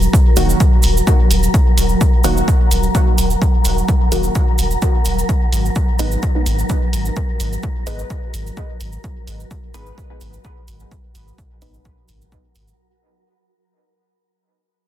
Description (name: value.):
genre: dub techno.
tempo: 128 BPM.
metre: 4/4.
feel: straight.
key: unclear.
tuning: A4 = 441 Hz.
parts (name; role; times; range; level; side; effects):
warm sub bass; bass; 0.0-12.7 s; Eb1 to Ab1; -20 LUFS; equal; sidechain pumping.
cabasa; percussion; 0.0-12.8 s; none; -27 LUFS; right 7 dB; none.
wind-like tuned noise texture; texture; 0.0-12.8 s; Gb3 to Bb4; -23 LUFS; equal; built-in reverb, sidechain pumping.
electronic kick drum; drums; 0.1-12.4 s; none; -16 LUFS; equal; none.
filtered dub chord stab; stabs; 0.4-12.8 s; Eb3 to Cb5; -24 LUFS; equal; chorus, phaser, sidechain pumping, dub echo.
electronic hi-hat; drums; 0.4-12.7 s; none; -26 LUFS; right 2 dB; none.
room: little or no reverb.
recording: dense, heavily limited modern master.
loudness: -13 LUFS.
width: side -12 dB against mid.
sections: 0.0-12.8 A section.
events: fade-out 0.0-12.8.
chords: 0.0 Ebm; 5.3 Abm.